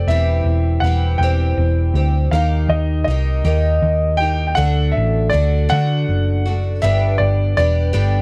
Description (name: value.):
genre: folk rock and heartland rock.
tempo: 53 BPM (dotted quarters).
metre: 6/8.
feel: straight.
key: unclear.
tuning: A4 = 440 Hz.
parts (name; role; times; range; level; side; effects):
clear grand piano; melody; 0.0-8.2 s; D5 to G5; -24 LUFS; equal; none.
picked twelve-string acoustic guitar; accompaniment; 0.0-8.2 s; G2 to G4; -25 LUFS; equal; none.
hollow-body short-scale picked electric bass; bass; 0.0-8.2 s; E1 to D3; -19 LUFS; equal; none.
room: little or no reverb.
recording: dry, close 1970s-style studio recording.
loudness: -17 LUFS.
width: mono.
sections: 0.0-2.3 A section; 2.3-8.2 B section.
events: none.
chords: 0.1 C/E; 2.3 Eb; 4.6 D; 6.8 G.